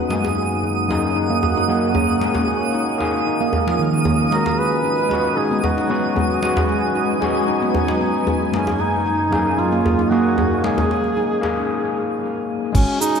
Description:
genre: organic downtempo.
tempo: 114 BPM.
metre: 4/4.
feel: straight.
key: unclear.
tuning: A4 = 440 Hz.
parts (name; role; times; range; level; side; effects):
overdriven tine electric piano; accompaniment; 0.0-13.2 s; F#2 to G#4; -22 LUFS; left 2 dB; auto-pan, sidechain pumping, ping-pong delay.
granular cloud pad; sustained chords; 0.0-13.2 s; F#3 to G#5; -26 LUFS; right 1 dB; built-in reverb, sidechain pumping.
handpan; arpeggios; 0.0-13.1 s; D#3 to G#4; -23 LUFS; right 1 dB; low-pass filter, ping-pong delay.
twinkling granular texture; texture; 0.0-13.2 s; G#5 to D#6; -27 LUFS; right 4 dB; built-in reverb, wide subtle chorus.
djembe; percussion; 0.1-11.5 s; none; -26 LUFS; left 1 dB; none.
mellow duduk; melody; 4.3-13.2 s; C#4 to B4; -23 LUFS; right 1 dB; ping-pong delay.
round analog bass; bass; 12.7-12.8 s; G#1; -17 LUFS; right 1 dB; tube saturation, sidechain pumping.
electronic crash cymbal and shaker; drums; 12.7-13.2 s; none; -25 LUFS; equal; low-pass filter on cymbals, low-pass filter on perc.
electronic kick drum; drums; 12.7-12.9 s; none; -19 LUFS; right 1 dB; overdrive.
room: wet lush hall reverb, RT60 1.9 s.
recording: bright 1980s-style digital production.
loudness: -17 LUFS.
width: side -6 dB against mid.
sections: 0.0-12.7 A section.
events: break 11.7-12.7.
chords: 0.1 F#; 2.2 A#m7; 4.3 G#m7; 8.5 F#; 10.6 A#m7.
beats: | 0.11 0.64 1.17 1.69 | 2.22 2.75 3.27 3.80 | 4.32 4.85 5.38 5.90 | 6.43 6.96 7.48 8.01 | 8.54 9.06 9.59 10.11 | 10.64 11.17 11.69 12.22 | 12.74.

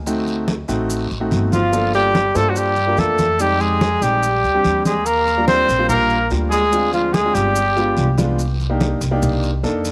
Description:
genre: Afro-Cuban jazz.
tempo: 144 BPM.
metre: 4/4.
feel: straight.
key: G minor.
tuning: A4 = 440 Hz.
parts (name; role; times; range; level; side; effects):
upright bass; bass; 0.0-9.9 s; G1 to G2; -25 LUFS; equal; none.
warm concert grand piano; accompaniment; 0.1-9.9 s; G3 to C5; -25 LUFS; equal; none.
congas; percussion; 0.1-9.9 s; none; -26 LUFS; equal; none.
guiro; percussion; 0.1-9.9 s; none; -38 LUFS; equal; none.
maracas; percussion; 0.1-9.9 s; none; -36 LUFS; equal; none.
clear trumpet; melody; 1.5-8.2 s; F4 to C5; -20 LUFS; equal; none.
growling tenor saxophone; second line; 1.5-8.2 s; F3 to C4; -24 LUFS; equal; none.
room: light reverb, small room ambience.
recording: none.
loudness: -18 LUFS.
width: mono.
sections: 0.0-5.1 A section; 5.1-9.9 B section.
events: none.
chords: 0.1 D7b9; 1.7 Gm9; 3.4 Fm7; 4.2 Bb69; 5.1 Ebmaj9; 6.7 Dm7b5; 7.6 G7b9; 8.4 Cm9.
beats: | 0.06 0.48 0.90 1.31 | 1.73 2.15 2.56 2.98 | 3.40 3.81 4.23 4.65 | 5.06 5.48 5.90 6.31 | 6.73 7.14 7.56 7.98 | 8.39 8.81 9.22 9.64.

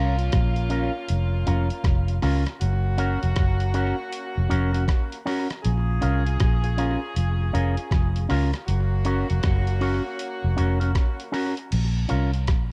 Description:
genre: roots reggae.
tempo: 79 BPM.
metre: 4/4.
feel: swing 62% on 16ths.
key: unclear.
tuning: A4 = 440 Hz.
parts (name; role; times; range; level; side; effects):
clear horn section; second line; 0.0-11.3 s; Bb3 to Ab4; -35 LUFS; equal; dub echo.
electric guitar with an envelope filter; accompaniment; 0.0-12.3 s; Db4 to Bb4; -32 LUFS; equal; dub echo.
vintage muted fingered electric bass; bass; 0.0-12.7 s; F1 to Db2; -25 LUFS; equal; none.
lo-fi sampler-style drum kit; drums; 0.2-12.7 s; crash cymbal, hi-hat, kick drum, rim click; -29 LUFS; equal; none.
room: little or no reverb.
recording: dark, warm production.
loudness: -24 LUFS.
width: mono.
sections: 0.0-11.7 A section; 11.7-12.7 B section.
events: none.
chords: 0.0 Bbm; 2.6 Gb; 5.6 Bbm; 8.7 Gb; 11.7 Bbm.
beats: 0.33 1.09 1.85 | 2.61 3.37 4.12 4.88 | 5.64 6.40 7.16 7.92 | 8.68 9.44 10.20 10.96 | 11.72 12.48.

